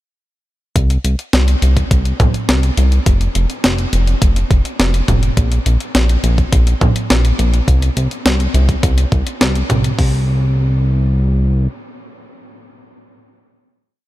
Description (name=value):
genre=synthwave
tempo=104 BPM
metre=4/4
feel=straight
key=unclear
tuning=A4 = 441 Hz
part: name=chorused synth bass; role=bass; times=0.8-11.7 s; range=F1 to C2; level=-14 LUFS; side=equal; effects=none
part: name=clean 12-bit digital drum machine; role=drums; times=0.8-10.1 s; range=hi-hat, kick drum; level=-15 LUFS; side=equal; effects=none
part: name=clean 12-bit digital drum machine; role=drums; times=0.8-10.0 s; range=hi-hat, snare drum, toms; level=-19 LUFS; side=equal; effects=none
room=light reverb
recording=none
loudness=-12 LUFS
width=side -16 dB against mid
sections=0.8-10.0 verse; 10.0-12.3 final note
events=none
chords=none